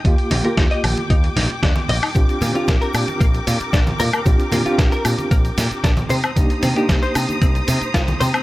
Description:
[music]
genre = nu-disco, nu disco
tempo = 114 BPM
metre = 4/4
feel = straight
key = Bb major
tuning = A4 = 439 Hz
[part]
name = reed electric piano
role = accompaniment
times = 0.0-8.4 s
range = Bb3 to G4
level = -24 LUFS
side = right 1 dB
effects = fast tremolo, sidechain pumping, tape echo
[part]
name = clear symphonic string section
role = sustained chords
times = 0.0-8.4 s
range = Bb4 to Eb6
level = -27 LUFS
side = left 2 dB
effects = sidechain pumping
[part]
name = dusty soul sampler-style drum kit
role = drums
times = 0.0-8.4 s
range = hi-hat, snare drum, woodblock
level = -24 LUFS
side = equal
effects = none
[part]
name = electronic kick drum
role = drums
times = 0.0-8.1 s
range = none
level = -17 LUFS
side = equal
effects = none
[part]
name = picked electric bass with an envelope filter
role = bass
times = 0.1-8.3 s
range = Bb1 to C3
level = -22 LUFS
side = equal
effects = none
[part]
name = direct-recorded clean electric guitar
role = riff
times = 0.3-8.4 s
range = Bb2 to Eb5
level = -25 LUFS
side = left 2 dB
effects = ensemble chorus, tape echo
[part]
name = congas and tube shaker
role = percussion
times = 0.3-8.4 s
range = none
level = -28 LUFS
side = right 1 dB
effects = none
[sound]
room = little or no reverb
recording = none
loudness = -15 LUFS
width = side -17 dB against mid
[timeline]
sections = 0.0-8.4 A section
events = none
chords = 0.0 Ebmaj7; 2.2 Bb6; 6.1 Cm7

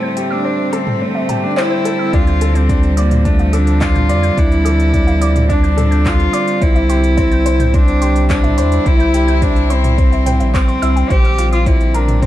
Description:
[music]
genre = piano and strings electronica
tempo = 107 BPM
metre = 4/4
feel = straight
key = D minor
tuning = A4 = 439 Hz
[part]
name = clear cello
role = melody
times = 0.0-12.3 s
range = A3 to G4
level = -18 LUFS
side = right 1 dB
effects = none
[part]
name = rich string quartet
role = sustained chords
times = 0.0-12.3 s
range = A2 to E5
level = -21 LUFS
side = equal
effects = sidechain pumping
[part]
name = warbly dusty pluck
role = arpeggios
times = 0.0-12.0 s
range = C5 to G6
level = -28 LUFS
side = right 2 dB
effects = chorus, sidechain pumping, ping-pong delay
[part]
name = bright upright piano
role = riff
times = 0.0-12.3 s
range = C4 to G5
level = -22 LUFS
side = left 2 dB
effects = none
[part]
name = deep house drum kit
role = drums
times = 0.2-12.3 s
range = handclaps, hi-hat, toms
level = -25 LUFS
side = equal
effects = none
[part]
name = warm sub bass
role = bass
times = 2.1-12.3 s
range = Bb1 to F2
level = -15 LUFS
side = equal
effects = tube saturation, sidechain pumping
[part]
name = electronic kick drum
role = drums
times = 2.1-12.3 s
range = none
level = -15 LUFS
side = equal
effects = none
[sound]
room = light reverb, studio reverb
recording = dark, warm production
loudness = -11 LUFS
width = side -13 dB against mid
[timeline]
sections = 0.0-2.1 A section; 2.1-12.3 B section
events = build-up 0.0-2.1; drop 2.1-12.3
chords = 0.0 Am7; 2.1 Dm; 6.6 C; 11.1 Bbadd9

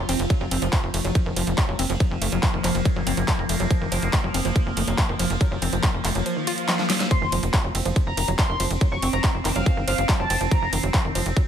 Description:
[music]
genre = psychedelic trance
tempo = 141 BPM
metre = 4/4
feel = straight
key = unclear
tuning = A4 = 440 Hz
[part]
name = overtone-sweeping drone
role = sustained chords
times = 0.0-11.5 s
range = F3 to F4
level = -29 LUFS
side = left 2 dB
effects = chorus, built-in reverb, sidechain pumping
[part]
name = woody wave-folded pluck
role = riff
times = 0.0-11.4 s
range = Eb3 to F4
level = -29 LUFS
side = right 2 dB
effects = chorus, auto-pan, sidechain pumping, ping-pong delay
[part]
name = tight sequencer bass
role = bass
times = 0.0-11.3 s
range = F1 to Gb1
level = -26 LUFS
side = equal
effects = none
[part]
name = big-room dance drum kit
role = drums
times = 0.1-11.4 s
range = handclaps, hi-hat, ride cymbal, snare drum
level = -28 LUFS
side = right 1 dB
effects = none
[part]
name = electronic kick drum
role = drums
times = 0.3-11.4 s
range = none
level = -22 LUFS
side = equal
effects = none
[part]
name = swell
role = sound effects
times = 6.4-7.1 s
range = none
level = -34 LUFS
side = right 1 dB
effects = none
[part]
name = overdriven synth lead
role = melody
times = 7.1-10.7 s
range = F5 to Db6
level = -28 LUFS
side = left 1 dB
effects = distortion, chorus, phaser, sidechain pumping, ping-pong delay
[sound]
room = light reverb, digital ambience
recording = none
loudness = -20 LUFS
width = side -9 dB against mid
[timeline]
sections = 0.0-11.5 A section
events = swell 6.4-7.1; drum fill 6.7-7.1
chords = 0.0 F5

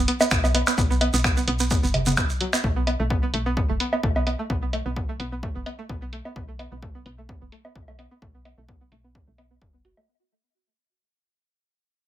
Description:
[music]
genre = minimal techno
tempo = 129 BPM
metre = 4/4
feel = swing 54% on 16ths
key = unclear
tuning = A4 = 441 Hz
[part]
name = string-like resonator pluck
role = riff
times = 0.0-10.0 s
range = F#3 to F#4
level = -28 LUFS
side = right 1 dB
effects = chorus, sidechain pumping, digital delay
[part]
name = woody FM bass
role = bass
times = 0.0-9.9 s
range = F#1 to B1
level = -28 LUFS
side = equal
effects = sidechain pumping
[part]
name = punchy analog drum machine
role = drums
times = 0.1-9.9 s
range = finger snaps, hi-hat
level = -26 LUFS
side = right 1 dB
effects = low-pass filter on hats, low-pass filter on snare, low-pass filter on room
[part]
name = electronic woodblock and toms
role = percussion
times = 0.2-10.1 s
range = none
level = -27 LUFS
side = right 1 dB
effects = overdrive, ping-pong delay
[part]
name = shekere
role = percussion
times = 0.2-2.6 s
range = none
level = -30 LUFS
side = right 4 dB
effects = none
[part]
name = electronic kick drum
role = drums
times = 0.3-9.7 s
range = none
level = -26 LUFS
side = equal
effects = none
[sound]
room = light reverb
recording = none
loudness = -21 LUFS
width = side -12 dB against mid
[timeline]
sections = 0.0-10.1 A section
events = fade-out 0.0-10.1; filter sweep on synth pluck 0.0-10.1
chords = 0.0 B5

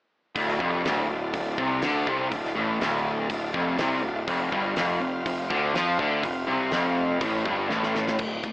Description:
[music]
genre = classic rock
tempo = 123 BPM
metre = 4/4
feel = straight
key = D minor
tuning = A4 = 440 Hz
[part]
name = bright tonewheel organ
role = sustained chords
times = 0.4-8.2 s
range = C4 to F5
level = -34 LUFS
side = equal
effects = none
[part]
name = distorted electric guitar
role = riff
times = 0.4-8.5 s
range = D2 to F3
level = -28 LUFS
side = left 2 dB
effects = distortion
[part]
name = overdriven semi-hollow guitar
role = riff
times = 0.4-8.2 s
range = D2 to F3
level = -29 LUFS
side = right 1 dB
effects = none
[part]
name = fuzz picked electric bass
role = bass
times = 0.4-8.4 s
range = D1 to F2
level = -29 LUFS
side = equal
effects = overdrive
[part]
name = damped 70s drum kit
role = drums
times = 0.4-8.5 s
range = crash cymbal, hi-hat, kick drum, snare drum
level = -34 LUFS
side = equal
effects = none
[sound]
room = moderate studio reverb, RT60 0.7 s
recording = AM radio sound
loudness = -23 LUFS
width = side -20 dB against mid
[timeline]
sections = 0.4-8.2 A section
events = drum fill 7.7-8.2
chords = 0.4 Dm; 4.3 F5

